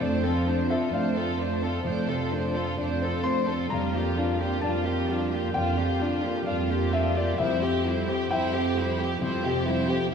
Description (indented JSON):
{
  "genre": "cinematic, emotional film score for orchestra",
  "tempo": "65 BPM",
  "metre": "4/4",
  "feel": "rubato",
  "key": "unclear",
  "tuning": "A4 = 438 Hz",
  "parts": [
    { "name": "dark studio violin section", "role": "melody", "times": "0.0-10.1 s", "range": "F4 to C5", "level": "-31 LUFS", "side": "left 4 dB", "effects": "none" },
    { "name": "warm chamber violin section", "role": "second line", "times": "0.0-10.1 s", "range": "D4 to G4", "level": "-33 LUFS", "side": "left 2 dB", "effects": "none" },
    { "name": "dark symphonic viola section", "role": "accompaniment", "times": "0.0-10.1 s", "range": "G3 to C4", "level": "-35 LUFS", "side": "right 4 dB", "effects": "none" },
    { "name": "warm concert grand piano", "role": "accompaniment", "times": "0.0-10.1 s", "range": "F2 to C6", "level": "-29 LUFS", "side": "left 2 dB", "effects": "none" },
    { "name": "dark studio cello section", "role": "bass", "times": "0.0-10.1 s", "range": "F2", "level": "-29 LUFS", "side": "right 4 dB", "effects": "none" }
  ],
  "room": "wet scoring stage reverb, RT60 1.6 s",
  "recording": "heard from further back in the room",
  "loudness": "-24 LUFS",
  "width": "side -6 dB against mid",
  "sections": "0.0-10.1 A section",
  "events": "none",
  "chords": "0.0 Dm7/F; 3.7 Gm7/F; 7.4 C/F"
}